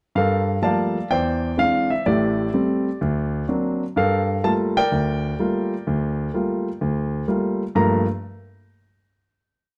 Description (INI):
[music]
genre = solo jazz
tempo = 126 BPM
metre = 4/4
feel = swing 68% on 8ths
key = G minor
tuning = A4 = 439 Hz
[part]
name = warm grand piano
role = solo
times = 0.2-8.1 s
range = A1 to Bb5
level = -22 LUFS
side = equal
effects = none
[sound]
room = moderate large studio reverb, RT60 1.0 s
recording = dark, warm production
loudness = -22 LUFS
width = mono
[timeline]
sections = 0.2-7.8 A section; 7.8-9.6 final chord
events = none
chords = 0.2 Gm9; 1.1 E7alt; 2.1 A7sus4; 3.0 D7b13; 4.0 Gm9